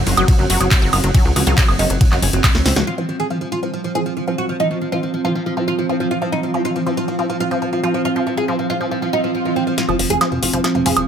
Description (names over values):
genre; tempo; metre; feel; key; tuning
psychedelic trance; 139 BPM; 4/4; straight; unclear; A4 = 441 Hz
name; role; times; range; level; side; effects
oud; melody; 0.0-11.0 s; F3 to Ab4; -23 LUFS; right 2 dB; phaser, sidechain pumping, digital delay
pulsing gated texture; sustained chords; 0.0-11.1 s; F3 to C4; -25 LUFS; right 2 dB; chorus, built-in reverb, sidechain pumping
wide unison pluck; riff; 0.0-11.1 s; F3 to Gb4; -23 LUFS; equal; auto-pan, sidechain pumping, ping-pong delay
plucky analog bass; bass; 0.0-2.8, 9.9-11.0 s; F1 to Db2; -19 LUFS; equal; tube saturation
warbly tape-like pad; texture; 0.0-11.1 s; C4 to Gb5; -25 LUFS; right 1 dB; chorus, built-in reverb, phaser, sidechain pumping
big-room dance drum kit; drums; 0.1-2.9, 9.8-11.1 s; handclaps, hi-hat, ride cymbal, snare drum, woodblock; -19 LUFS; right 1 dB; high-pass filter on hats, low-pass filter on hats, high-pass filter on cymbals, low-pass filter on cymbals, high-pass filter on perc, low-pass filter on perc, high-pass filter on snare, low-pass filter on snare
electronic kick drum; drums; 0.3-2.5 s; none; -14 LUFS; equal; overdrive
swell; sound effects; 9.1-9.8 s; none; -27 LUFS; right 4 dB; none
room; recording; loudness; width
light reverb; none; -15 LUFS; side -8 dB against mid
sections
0.0-2.9 A section; 2.9-9.8 B section; 9.8-11.1 C section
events
drop 0.0-2.9; drum fill 2.5-2.9, 9.8-11.1; filter sweep on drum 2.9-9.8; filter sweep on synth arpeggio sound 2.9-9.8, 9.8-11.1; filter sweep on synth texture 2.9-9.8; swell 9.1-9.8; build-up 9.8-11.1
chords
0.0 Gb5; 2.9 F5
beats
0.28 0.71 | 1.15 1.58 2.01 2.44 | 2.87 3.30 3.74 4.17 | 4.60 5.03 5.46 5.89 | 6.33 6.76 7.19 7.62 | 8.05 8.48 8.91 9.35 | 9.78 10.21 10.64 11.07